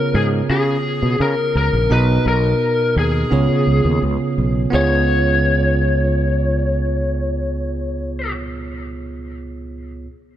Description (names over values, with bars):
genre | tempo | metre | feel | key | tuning
1980s-style pop | 85 BPM | 4/4 | straight | Db mixolydian | A4 = 439 Hz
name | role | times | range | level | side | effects
lead guitar through a small cranked amp | melody | 0.0-8.3 s | Ab4 to Db5 | -21 LUFS | left 3 dB | overdrive, tape echo
bell-like tine electric piano | accompaniment | 0.0-10.1 s | Db2 to Bb5 | -20 LUFS | right 3 dB | none
fretless electric bass | bass | 0.1-8.3 s | Bb1 to Db3 | -19 LUFS | equal | none
room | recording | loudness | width
moderate plate reverb, RT60 3.5 s | dark, warm production | -15 LUFS | side -11 dB against mid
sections
0.0-4.7 A section; 4.7-7.6 B section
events
none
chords
0.0 Db7; 1.9 Cbmaj7; 3.3 Db7